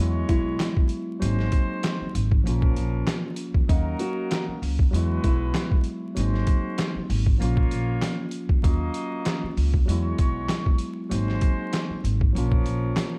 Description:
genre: hip hop, boom-bap hip-hop.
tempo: 97 BPM.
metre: 4/4.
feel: swing 54% on 16ths.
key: Eb dorian.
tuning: A4 = 445 Hz.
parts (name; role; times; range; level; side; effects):
mellow tine electric piano; accompaniment; 0.0-13.2 s; F3 to F5; -32 LUFS; equal; cassette tape, high-pass filter, low-pass filter.
warm horn section; stabs; 0.0-13.2 s; F3 to Eb5; -38 LUFS; equal; high-pass filter, low-pass filter, slapback echo.
upright bass; bass; 0.0-12.9 s; Ab1 to E2; -28 LUFS; equal; none.
trip hop sampler-style drum kit; drums; 0.0-13.1 s; handclaps, hi-hat, kick drum, snare drum; -26 LUFS; equal; none.
flamenco guitar; melody; 0.3-6.1 s; Eb4 to Gb4; -34 LUFS; equal; high-pass filter, low-pass filter, slapback echo.
room: small room ambience.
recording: dark, warm production, vinyl crackle.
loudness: -24 LUFS.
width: mono.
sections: 0.0-13.2 A section.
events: none.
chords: 0.0 Eadd9; 1.2 Ab7; 2.5 Bbm; 3.7 Ebm7; 4.9 Eadd9; 6.2 Ab7; 7.4 Bbm; 8.6 Ebm7; 9.9 Eadd9; 11.1 Ab7; 12.4 Bbm.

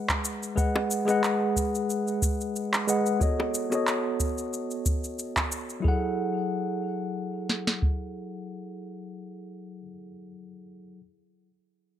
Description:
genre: sunset chillout.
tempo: 91 BPM.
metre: 4/4.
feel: swing 54% on 16ths.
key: F# dorian.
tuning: A4 = 438 Hz.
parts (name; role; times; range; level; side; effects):
tine electric piano; accompaniment; 0.0-11.0 s; F#3 to F#5; -29 LUFS; equal; auto-pan, low-pass filter, ping-pong delay.
electronic handclaps and shaker; drums; 0.1-5.8 s; none; -30 LUFS; equal; overdrive.
soft vintage rhythm box; drums; 0.1-8.0 s; kick drum, snare drum; -27 LUFS; equal; none.
bongos; percussion; 0.8-3.8 s; none; -32 LUFS; left 1 dB; none.
room: light reverb.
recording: none.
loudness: -25 LUFS.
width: side -10 dB against mid.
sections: 0.0-5.8 A section; 5.8-8.5 B section.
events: filter sweep on tine electric piano 0.0-5.8.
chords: 0.0 G#m7; 3.2 B7; 5.8 F#m9.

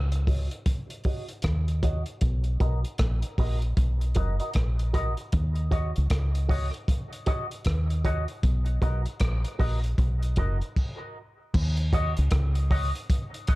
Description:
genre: dub reggae.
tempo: 77 BPM.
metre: 4/4.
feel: swing 62% on 16ths.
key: Eb minor.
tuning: A4 = 441 Hz.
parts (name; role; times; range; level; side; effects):
deep dub fingered electric bass; bass; 0.0-12.9 s; F#1 to Eb2; -25 LUFS; equal; none.
crunchy breakbeat drum kit; drums; 0.1-13.6 s; crash cymbal, hi-hat, kick drum, rim click; -27 LUFS; equal; none.
electric guitar with an envelope filter; accompaniment; 0.3-13.6 s; Gb4 to Eb5; -35 LUFS; right 1 dB; wide subtle chorus, high-pass filter, low-pass filter, dub echo.
room: small room ambience.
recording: dark, warm production.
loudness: -24 LUFS.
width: side -20 dB against mid.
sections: 0.0-11.5 A section; 11.5-13.6 B section.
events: filter sweep on clean electric guitar 0.0-13.6; stop 10.8-11.5.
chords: 0.0 Ebm7; 2.2 Bmaj7; 5.3 Ebm7; 8.4 Bmaj7; 11.5 Ebm7.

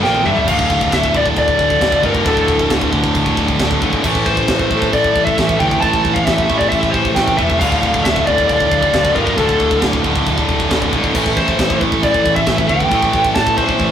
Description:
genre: heavy metal.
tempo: 135 BPM.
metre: 4/4.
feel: straight.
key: D minor.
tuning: A4 = 440 Hz.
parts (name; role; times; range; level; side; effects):
high-gain lead guitar; melody; 0.0-13.9 s; A4 to A5; -16 LUFS; left 1 dB; distortion.
rich studio string section; sustained chords; 0.0-13.9 s; D3 to F5; -27 LUFS; right 1 dB; none.
high-gain distorted guitar; riff; 0.0-13.9 s; D2 to Bb3; -19 LUFS; left 3 dB; distortion.
high-gain distorted guitar; riff; 0.0-13.9 s; D2 to Bb3; -20 LUFS; right 6 dB; distortion.
picked electric bass; bass; 0.0-13.9 s; D1 to D2; -24 LUFS; equal; none.
tight metal drum kit; drums; 0.0-13.9 s; china cymbal, crash cymbal, kick drum, snare drum, toms; -20 LUFS; equal; none.
room: moderate studio reverb, RT60 0.6 s.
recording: rough rehearsal-room recording.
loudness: -12 LUFS.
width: side -9 dB against mid.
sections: 0.5-13.9 A section.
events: drum fill 0.0-0.5.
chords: 0.5 D5; 4.0 Am; 7.6 Dm; 11.1 Am.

